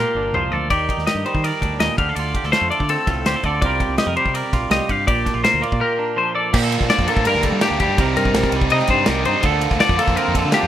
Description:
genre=math rock and midwest emo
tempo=165 BPM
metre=4/4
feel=straight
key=unclear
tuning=A4 = 440 Hz
part: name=twangy electric guitar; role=accompaniment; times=0.0-10.7 s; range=G2 to Bb4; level=-23 LUFS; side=right 7 dB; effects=none
part: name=twelve-string electric guitar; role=arpeggios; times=0.0-10.7 s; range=G4 to F5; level=-20 LUFS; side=left 4 dB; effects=none
part: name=growling fingered electric bass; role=bass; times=0.0-10.7 s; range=G1 to G3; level=-24 LUFS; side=equal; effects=overdrive
part: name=loose indie drum kit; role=drums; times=0.3-10.6 s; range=crash cymbal, kick drum, ride cymbal, snare drum, toms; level=-23 LUFS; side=equal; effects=none
part: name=biting overdriven guitar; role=riff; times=6.5-10.7 s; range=G2 to F4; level=-22 LUFS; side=equal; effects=none
room=moderate studio reverb, RT60 0.6 s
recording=rough home demo mix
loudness=-16 LUFS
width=side -11 dB against mid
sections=0.0-6.5 A section; 6.5-10.7 B section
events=drum fill 0.0-0.7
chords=0.0 Bb6; 0.7 Ebmaj7; 2.0 Dm7; 3.6 C7sus4; 5.1 Bb6; 6.5 Bbmaj7; 7.3 Gmadd9; 8.0 Cm7; 9.5 Bbmaj9/D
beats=0.34 | 0.71 1.07 1.44 1.80 | 2.17 2.53 2.90 3.26 | 3.63 3.99 4.36 4.72 | 5.08 5.45 5.81 6.18 | 6.54 6.91 7.27 7.63 | 8.00 8.36 8.72 9.09 | 9.45 9.82 10.18 10.54

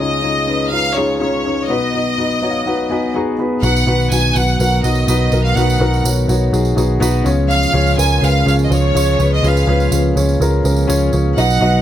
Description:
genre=piano-driven pop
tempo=124 BPM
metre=4/4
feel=straight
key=Db mixolydian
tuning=A4 = 440 Hz
part: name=clear studio violin section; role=melody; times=0.0-11.8 s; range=Db5 to Ab5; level=-19 LUFS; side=right 1 dB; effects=none
part: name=dark grand piano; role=accompaniment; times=0.0-11.8 s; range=Cb2 to Cb6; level=-17 LUFS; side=left 2 dB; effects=none
part: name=sweeping resonant pad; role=sustained chords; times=3.6-11.8 s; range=Db3 to Gb4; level=-25 LUFS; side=right 3 dB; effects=chorus
part: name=vintage muted picked electric bass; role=bass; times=3.6-11.8 s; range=Cb2 to Db2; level=-15 LUFS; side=right 1 dB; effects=none
part: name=tambourine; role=percussion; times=3.6-11.6 s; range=none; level=-28 LUFS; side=right 8 dB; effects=none
room=light reverb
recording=none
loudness=-13 LUFS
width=side -11 dB against mid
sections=0.0-3.6 A section; 3.6-11.8 B section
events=grand piano fill 2.2-3.6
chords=0.0 Dbadd9; 1.7 Cb; 7.3 Db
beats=0.23 0.72 1.20 | 1.69 2.17 2.66 3.14 | 3.63 4.11 4.59 5.08 | 5.56 6.05 6.53 7.01 | 7.50 7.98 8.47 8.95 | 9.44 9.92 10.40 10.89 | 11.37

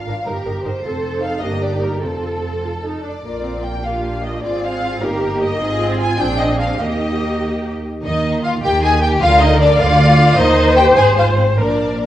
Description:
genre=quick classical-period movement for string orchestra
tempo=101 BPM (dotted quarters)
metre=6/8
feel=rubato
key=Bb major, Eb major from 5.6 s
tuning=A4 = 440 Hz
part: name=warm symphonic violin section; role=second line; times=0.0-12.1 s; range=A4 to Ab5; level=-19 LUFS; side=left 2 dB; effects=none
part: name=dark symphonic cello section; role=bass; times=0.0-12.1 s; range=Ab2 to A4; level=-21 LUFS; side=right 2 dB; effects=none
part: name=warm symphonic violin section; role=melody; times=0.1-12.1 s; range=C4 to Bb4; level=-24 LUFS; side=left 4 dB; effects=none
part: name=rich studio viola section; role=accompaniment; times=0.1-12.1 s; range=Bb3 to D5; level=-21 LUFS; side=right 1 dB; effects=none
part: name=dark symphonic double bass section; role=bass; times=0.1-12.1 s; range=F1 to Eb2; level=-21 LUFS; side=right 2 dB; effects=none
room=wet recital hall reverb, RT60 1.4 s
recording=worn, warbling old tape, cassette tape, warbly pitch drift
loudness=-14 LUFS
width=side -12 dB against mid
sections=0.0-8.0 A section; 8.0-12.1 B section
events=none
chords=0.3 Eb/G; 0.8 F; 1.4 Gm; 2.0 F; 3.2 Bb; 4.4 Ab6; 5.0 Eb/G; 5.6 Fm7/Ab; 6.2 Bb9; 6.8 Eb; 9.2 Bb/D; 10.4 Eb6; 11.0 Ab6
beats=0.26 | 0.84 1.42 | 2.02 2.63 | 3.24 3.84 | 4.43 5.02 | 5.60 6.19 | 6.80 7.42 | 8.04 8.63 | 9.22 9.80 | 10.38 10.98 | 11.59

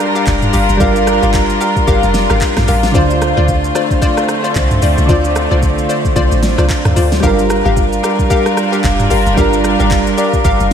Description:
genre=amapiano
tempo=112 BPM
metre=4/4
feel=swing 58% on 16ths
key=unclear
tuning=A4 = 440 Hz
part: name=soft electric-piano-like synth keys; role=accompaniment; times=0.0-10.7 s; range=D3 to F5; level=-18 LUFS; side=right 3 dB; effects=chorus
part: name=warm studio string section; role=sustained chords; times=0.0-10.7 s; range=D3 to Bb4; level=-17 LUFS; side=equal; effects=sidechain pumping
part: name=analog pluck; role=stabs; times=0.0-10.7 s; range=F4 to F5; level=-19 LUFS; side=left 5 dB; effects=chorus, diffuse ambient delay
part: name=smooth R&B drum kit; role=drums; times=0.0-10.7 s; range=handclaps, hi-hat, kick drum, rim click, shaker, snare drum, toms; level=-17 LUFS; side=equal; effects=none
part: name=deep log drum bass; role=bass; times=0.3-10.7 s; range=F1 to D2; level=-16 LUFS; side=equal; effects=none
room=moderate lush hall reverb, RT60 1.8 s, digital ambience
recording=dreamy mix soaked in reverb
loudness=-10 LUFS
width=side -8 dB against mid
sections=0.0-10.7 A section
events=synth keys fill 9.9-10.7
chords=0.0 Gm7; 2.9 Dm7; 7.2 Gm7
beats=0.27 | 0.81 1.34 1.88 2.41 | 2.95 3.48 4.02 4.55 | 5.09 5.63 6.16 6.70 | 7.23 7.77 8.30 8.84 | 9.38 9.91 10.45

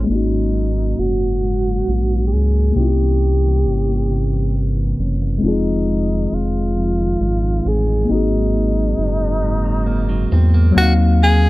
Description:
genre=R&B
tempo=45 BPM (dotted quarters)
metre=6/8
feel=straight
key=unclear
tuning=A4 = 441 Hz
part: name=clean electric guitar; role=second line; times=0.0-11.3 s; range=F2 to C5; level=-24 LUFS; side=right 3 dB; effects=none
part: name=tine electric piano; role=accompaniment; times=0.0-11.5 s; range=C3 to F5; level=-22 LUFS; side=left 3 dB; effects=none
part: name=rubbery square bass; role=bass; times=0.0-11.5 s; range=F1 to Fb2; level=-17 LUFS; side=equal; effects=none
part: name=breathy tenor saxophone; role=melody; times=0.1-11.5 s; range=Eb4 to Ab4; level=-23 LUFS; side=equal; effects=none
room=little or no reverb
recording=low-pass filter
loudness=-15 LUFS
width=side -18 dB against mid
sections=0.1-10.8 A section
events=filter sweep 0.1-10.8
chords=0.1 Ab9sus4; 2.8 C7b9; 5.4 Fm7; 8.1 Ab9; 10.8 Ebm69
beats=| 0.09 1.42 | 2.76 4.09 | 5.42 6.76 | 8.09 9.42 | 10.76

